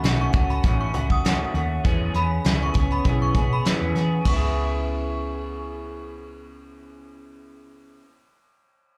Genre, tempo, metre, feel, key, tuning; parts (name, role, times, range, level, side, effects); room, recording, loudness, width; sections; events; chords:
indie pop, bedroom pop; 99 BPM; 4/4; swing 55% on 16ths; C# minor; A4 = 442 Hz
electric guitar through a small old amp; accompaniment; 0.0-8.1 s; C#3 to G#4; -31 LUFS; equal; lush chorus, vibrato effect, slapback echo
hollow-body short-scale fingered electric bass; bass; 0.0-8.0 s; A1 to E3; -27 LUFS; equal
soft brush drum kit; drums; 0.0-4.4 s; hi-hat, kick drum, ride cymbal, snare drum; -26 LUFS; equal
synth chime; second line; 0.2-6.0 s; B5 to D#6; -34 LUFS; equal; ensemble chorus, lush chorus, digital delay, slapback echo
light reverb; live gig heard through the venue's PA, club reverb; -23 LUFS; mono
0.0-4.3 A section; 4.3-6.7 B section
0.0 D#m7b5; 1.8 E6; 4.3 C#m7